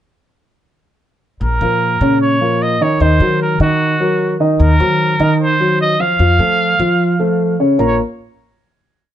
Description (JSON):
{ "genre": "latin, Cuban son and guajira", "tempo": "150 BPM", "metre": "4/4", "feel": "straight", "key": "Bb harmonic minor", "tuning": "A4 = 440 Hz", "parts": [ { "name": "breathy trumpet", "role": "melody", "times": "1.4-8.0 s", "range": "Gb4 to F5", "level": "-16 LUFS", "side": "right 2 dB", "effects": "none" }, { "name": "upright bass", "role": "bass", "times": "1.4-8.0 s", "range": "Bb1 to F3", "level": "-17 LUFS", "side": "equal", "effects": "none" }, { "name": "dark concert grand piano", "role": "arpeggios", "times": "1.6-8.0 s", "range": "Db3 to Bb5", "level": "-15 LUFS", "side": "equal", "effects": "none" } ], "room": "light reverb", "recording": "nothing above 10.8 kHz", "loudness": "-12 LUFS", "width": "side -11 dB against mid", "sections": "1.4-7.8 verse; 7.8-9.1 final chord", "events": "none", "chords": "1.4 Bbm; 3.0 Ebm; 4.6 Cdim/Eb; 6.2 F; 7.8 Bbm" }